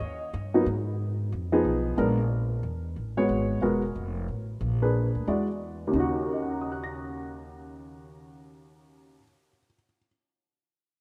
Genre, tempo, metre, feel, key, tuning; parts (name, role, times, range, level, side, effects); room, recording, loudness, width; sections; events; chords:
jazz piano trio; 182 BPM; 4/4; swing 64% on 8ths; Eb minor; A4 = 438 Hz
warm upright piano; melody; 0.0-10.1 s; Eb2 to Bb6; -29 LUFS; equal
upright bass; bass; 0.0-9.2 s; Fb1 to Ab2; -33 LUFS; equal
moderate plate reverb, RT60 2.4 s; rough home demo mix; -28 LUFS; mono
0.7-5.9 A section; 5.9-8.6 B section
0.0 Eb; 0.7 N.C.; 1.3 Fm7b5; 2.0 Bb7b9; 2.6 N.C.; 3.3 Abm9; 4.0 F; 4.6 Bb7b9; 5.3 E9; 5.9 Ebm7